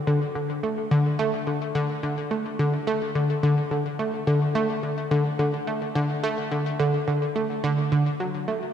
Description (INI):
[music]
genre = ambient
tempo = 107 BPM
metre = 4/4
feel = straight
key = unclear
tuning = A4 = 440 Hz
[part]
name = analog pluck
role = solo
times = 0.1-8.7 s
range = D3 to A3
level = -22 LUFS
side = equal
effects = chorus, cassette tape, ping-pong delay
[sound]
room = wet lush hall reverb, RT60 2.7 s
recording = dreamy mix soaked in reverb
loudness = -22 LUFS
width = side -9 dB against mid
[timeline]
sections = 0.0-8.7 A section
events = none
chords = none